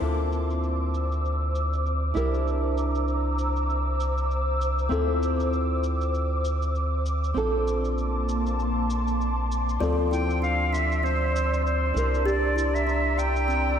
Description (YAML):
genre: sunset chillout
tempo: 98 BPM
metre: 4/4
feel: swing 57% on 16ths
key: D minor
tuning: A4 = 440 Hz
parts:
  - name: nylon-string guitar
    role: accompaniment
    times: 0.0-13.8 s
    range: F3 to D5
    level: -30 LUFS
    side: moving between left 5 dB and right 5 dB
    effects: auto-pan, digital delay, slapback echo
  - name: ethereal airy pad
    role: sustained chords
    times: 0.0-13.8 s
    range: Bb3 to E6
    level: -29 LUFS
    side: equal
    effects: ensemble chorus, built-in reverb, tremolo
  - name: round analog bass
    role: bass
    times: 0.0-13.8 s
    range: Bb1 to D2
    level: -26 LUFS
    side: equal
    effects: tube saturation
  - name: cabasa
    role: drums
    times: 0.0-13.6 s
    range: none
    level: -48 LUFS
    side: left 1 dB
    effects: low-pass filter on perc, small room ambience, low-pass filter on snare
  - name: buzzing kalimba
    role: arpeggios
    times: 9.8-13.8 s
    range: C4 to G4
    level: -33 LUFS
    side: equal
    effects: digital delay, slapback echo
  - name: bright reedy jazz flute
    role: melody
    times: 10.1-13.8 s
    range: C5 to G5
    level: -27 LUFS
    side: equal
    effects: tape echo
room: wet lush hall reverb, RT60 2.0 s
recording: big arena sound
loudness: -23 LUFS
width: side -8 dB against mid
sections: 0.0-13.8 A section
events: none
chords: 0.0 Dm9; 2.2 C9; 4.9 Dm9; 7.4 Bbmaj9; 9.8 Dm9; 12.0 C9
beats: | 0.01 0.63 1.24 1.85 | 2.46 3.08 3.69 4.30 | 4.91 5.53 6.14 6.75 | 7.36 7.97 8.59 9.20 | 9.81 10.42 11.04 11.65 | 12.26 12.87 13.48